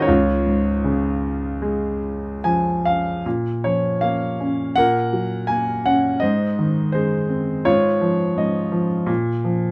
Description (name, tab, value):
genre	classical, lyrical solo piano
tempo	70-85 BPM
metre	4/4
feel	rubato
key	Db major, Bb minor from 3.3 s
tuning	A4 = 439 Hz
part	warm grand piano	solo	0.0-9.7 s	Db2 to Ab5	-21 LUFS	equal	none
room	light reverb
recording	dark, warm production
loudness	-21 LUFS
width	mono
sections	0.0-3.3 A section; 3.3-9.7 B section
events	grand piano fill 2.0-3.3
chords	0.1 Db; 3.3 Bbm; 4.8 Gb/Bb; 6.2 Ab; 7.7 Db/Ab; 9.1 Bb5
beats	| 0.09 0.84 1.61 2.43 | 3.25 4.02 4.76 5.49 | 6.21 6.94 7.66 8.38 | 9.09